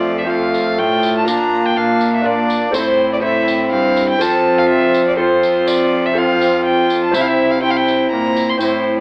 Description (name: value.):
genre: classical, renaissance-style consort dance.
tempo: 123 BPM.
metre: 3/4.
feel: straight.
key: unclear.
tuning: A4 = 440 Hz.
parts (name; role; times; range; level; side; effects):
rich violin; melody; 0.0-9.0 s; C5 to C6; -22 LUFS; equal; none.
warm viola; second line; 0.0-9.0 s; D4 to F4; -22 LUFS; equal; none.
lute; accompaniment; 0.0-9.0 s; F2 to C5; -24 LUFS; equal; none.
warm trombone; accompaniment; 0.0-9.0 s; A3 to C4; -21 LUFS; equal; none.
rich cello; bass; 0.0-9.0 s; F2 to C3; -25 LUFS; equal; none.
tambourine; percussion; 0.5-8.8 s; none; -32 LUFS; equal; none.
room: moderate stone room reverb, RT60 1.1 s.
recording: AM radio sound.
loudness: -15 LUFS.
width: mono.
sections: 0.0-9.0 A section.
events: none.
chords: 0.0 F; 1.3 Bb; 2.7 Am; 4.2 F; 7.1 C.